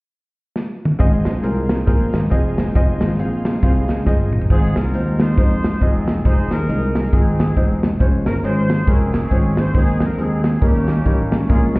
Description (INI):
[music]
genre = uptempo gospel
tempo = 137 BPM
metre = 4/4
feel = swing 60% on 8ths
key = Ab major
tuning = A4 = 438 Hz
[part]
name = tight funk drum kit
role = drums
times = 0.6-11.8 s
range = crash cymbal, hi-hat, kick drum, snare drum, toms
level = -18 LUFS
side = equal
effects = none
[part]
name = clear concert grand piano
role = accompaniment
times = 1.0-11.8 s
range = Ab2 to F5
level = -22 LUFS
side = equal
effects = none
[part]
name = bright tonewheel organ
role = sustained chords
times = 1.0-4.7 s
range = Ab3 to Ab5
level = -30 LUFS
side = right 2 dB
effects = slow rotary speaker, overdrive, chorus vibrato
[part]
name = sustaining fretless electric bass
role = bass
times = 1.0-11.8 s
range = Fb1 to F2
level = -18 LUFS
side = equal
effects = analog chorus
[part]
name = warm horn section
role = melody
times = 4.5-11.8 s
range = Bb3 to C5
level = -27 LUFS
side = equal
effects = none
[sound]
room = little or no reverb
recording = heard muffled through a wall, stone room reverb, EQ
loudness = -15 LUFS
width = side -24 dB against mid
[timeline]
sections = 1.0-4.5 A section; 4.5-11.8 B section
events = drum fill 0.6-1.0, 4.1-4.5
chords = 0.0 N.C.; 1.0 Ab6; 2.8 Fm7; 4.5 Ab6; 6.3 Fm7; 8.0 Dbmaj7/F; 9.7 Ab/Eb; 10.6 Eb7